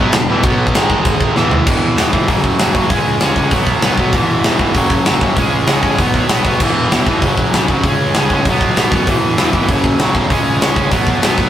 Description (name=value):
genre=punk rock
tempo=194 BPM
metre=4/4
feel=straight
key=E major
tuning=A4 = 439 Hz
part: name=distorted electric guitar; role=riff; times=0.0-11.5 s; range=E2 to C#4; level=-15 LUFS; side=equal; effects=overdrive
part: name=fuzz picked electric bass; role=bass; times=0.0-11.5 s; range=E1 to F#2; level=-21 LUFS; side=equal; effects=overdrive
part: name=big rock drum kit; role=drums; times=0.1-11.5 s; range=crash cymbal, hi-hat, kick drum, snare drum, toms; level=-15 LUFS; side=equal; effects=none
room=light reverb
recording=rough rehearsal-room recording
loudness=-11 LUFS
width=side -11 dB against mid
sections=0.0-1.7 A section; 1.7-11.5 B section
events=drum fill 1.4-1.7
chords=0.4 B5; 0.7 G#5; 1.4 E5; 2.3 F#5; 2.9 C#5; 3.5 B5; 4.1 E; 4.8 F#5; 5.4 C#5; 6.0 B5; 6.6 E5; 7.2 F#5; 7.8 C#5; 8.5 B5; 9.1 E; 9.7 F#5; 10.3 C#5; 10.9 B5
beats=0.13 | 0.44 0.75 1.05 1.36 | 1.67 1.98 2.29 2.60 | 2.91 3.21 3.52 3.83 | 4.14 4.45 4.76 5.07 | 5.38 5.68 5.99 6.30 | 6.61 6.92 7.23 7.54 | 7.84 8.15 8.46 8.77 | 9.08 9.39 9.69 10.00 | 10.31 10.62 10.93 11.23